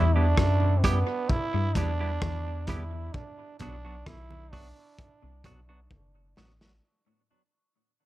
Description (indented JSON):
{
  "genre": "dub reggae",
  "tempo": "65 BPM",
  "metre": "4/4",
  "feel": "straight",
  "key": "unclear",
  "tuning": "A4 = 440 Hz",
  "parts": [
    { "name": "growling trombone", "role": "melody", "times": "0.0-5.9 s", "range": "B3 to E4", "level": "-33 LUFS", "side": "right 4 dB", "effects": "tape echo" },
    { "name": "semi-hollow electric guitar", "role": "accompaniment", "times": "0.0-6.7 s", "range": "F#3 to G4", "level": "-34 LUFS", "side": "right 4 dB", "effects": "tape echo" },
    { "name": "semi-hollow electric guitar", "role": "riff", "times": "0.0-6.7 s", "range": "F#2 to G3", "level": "-38 LUFS", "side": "left 7 dB", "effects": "tape echo" },
    { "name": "soft dub sub bass", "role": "bass", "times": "0.0-6.8 s", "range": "F#1 to G2", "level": "-26 LUFS", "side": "equal", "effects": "none" },
    { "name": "crunchy breakbeat drum kit", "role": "drums", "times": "0.4-6.8 s", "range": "hi-hat, kick drum, rim click, snare drum", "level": "-30 LUFS", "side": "equal", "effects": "tape echo" },
    { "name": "congas", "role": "percussion", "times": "1.3-6.8 s", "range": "none", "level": "-42 LUFS", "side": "right 4 dB", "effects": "none" }
  ],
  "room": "light reverb, small room ambience",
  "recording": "none",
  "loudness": "-24 LUFS",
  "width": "side -16 dB against mid",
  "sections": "0.0-6.8 A section",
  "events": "fade-out 0.0-6.8; drum fill 5.9-6.8",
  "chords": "0.0 Em; 3.1 Bm"
}